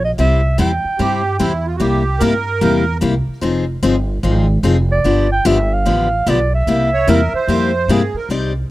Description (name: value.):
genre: acoustic string swing (jazz manouche).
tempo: 148 BPM.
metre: 4/4.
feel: swing 63% on 8ths.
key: unclear.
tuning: A4 = 440 Hz.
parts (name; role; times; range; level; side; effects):
breathy clarinet; melody; 0.0-1.6, 4.9-7.9 s; D5 to G5; -19 LUFS; right 2 dB; none.
upright bass; bass; 0.0-8.7 s; F1 to G2; -18 LUFS; right 1 dB; none.
picked steel-string acoustic guitar; accompaniment; 0.2-8.5 s; C3 to D5; -17 LUFS; left 4 dB; none.
accordion; second line; 1.0-3.0, 6.9-8.3 s; E4 to Db5; -20 LUFS; right 4 dB; light tremolo tuning.
room: little or no reverb.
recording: dry, close 1970s-style studio recording.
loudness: -13 LUFS.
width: side -16 dB against mid.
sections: 0.0-8.3 A section.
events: none.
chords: 0.2 C; 1.8 C7; 3.4 Fm7; 5.0 G7; 6.7 C7.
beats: | 0.18 0.59 0.99 1.40 | 1.80 2.21 2.62 3.02 | 3.43 3.83 4.24 4.64 | 5.05 5.45 5.86 6.27 | 6.67 7.08 7.49 7.89 | 8.30.